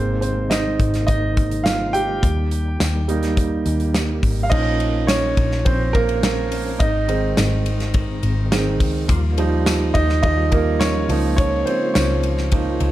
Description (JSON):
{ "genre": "piano-driven pop", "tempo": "105 BPM", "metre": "4/4", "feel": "straight", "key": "Ab major", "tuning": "A4 = 439 Hz", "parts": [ { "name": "clear upright piano", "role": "accompaniment", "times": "0.0-12.9 s", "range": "Eb3 to G5", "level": "-21 LUFS", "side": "right 3 dB", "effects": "none" }, { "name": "percussive tonewheel organ", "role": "sustained chords", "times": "0.0-12.9 s", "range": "C3 to F4", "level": "-29 LUFS", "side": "left 1 dB", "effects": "chorus vibrato, fast rotary speaker" }, { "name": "vintage muted picked electric bass", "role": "bass", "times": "0.0-12.9 s", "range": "Ab1 to Eb2", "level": "-22 LUFS", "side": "equal", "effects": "none" }, { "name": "modern studio drum kit", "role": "drums", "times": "0.2-12.9 s", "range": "crash cymbal, hi-hat, kick drum, ride cymbal, snare drum", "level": "-22 LUFS", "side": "equal", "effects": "none" }, { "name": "tambourine", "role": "percussion", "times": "0.5-12.1 s", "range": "none", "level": "-35 LUFS", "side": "left 11 dB", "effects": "none" } ], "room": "moderate large studio reverb, RT60 1.2 s, small room ambience", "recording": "dark, warm production", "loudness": "-17 LUFS", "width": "side -14 dB against mid", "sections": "0.0-4.5 A section; 4.5-12.9 B section", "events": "upright piano solo 0.0-4.5, 4.5-12.9", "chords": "0.0 Abadd9; 2.2 Eb; 4.5 Bbm; 6.8 Ab; 9.1 Ebadd9; 11.1 Db6" }